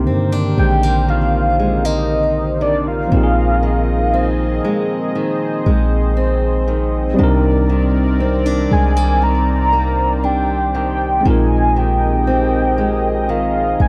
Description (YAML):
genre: contemporary R&B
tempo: 59 BPM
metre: 4/4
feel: straight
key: C minor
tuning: A4 = 439 Hz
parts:
  - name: tine electric piano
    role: accompaniment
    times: 0.0-13.9 s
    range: D3 to Bb4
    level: -24 LUFS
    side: equal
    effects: none
  - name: warm analog pad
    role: sustained chords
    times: 0.0-13.9 s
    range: Eb3 to Eb5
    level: -27 LUFS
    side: equal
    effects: chorus
  - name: fingerpicked steel-string acoustic guitar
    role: arpeggios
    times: 0.0-13.9 s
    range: Bb2 to D4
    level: -24 LUFS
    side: equal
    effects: none
  - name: clean 808-style bass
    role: bass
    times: 0.0-13.9 s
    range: Ab1 to G2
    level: -20 LUFS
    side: equal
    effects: none
  - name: warm velvety synth lead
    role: melody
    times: 0.6-13.9 s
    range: D5 to Bb5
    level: -21 LUFS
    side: equal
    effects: chorus, tremolo, tape echo
room: little or no reverb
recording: dry, gritty hardware recording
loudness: -16 LUFS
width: mono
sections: 0.0-13.9 A section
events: none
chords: 0.0 Cm9; 3.1 Bb9sus4; 7.2 Cm9; 11.3 Bb9sus4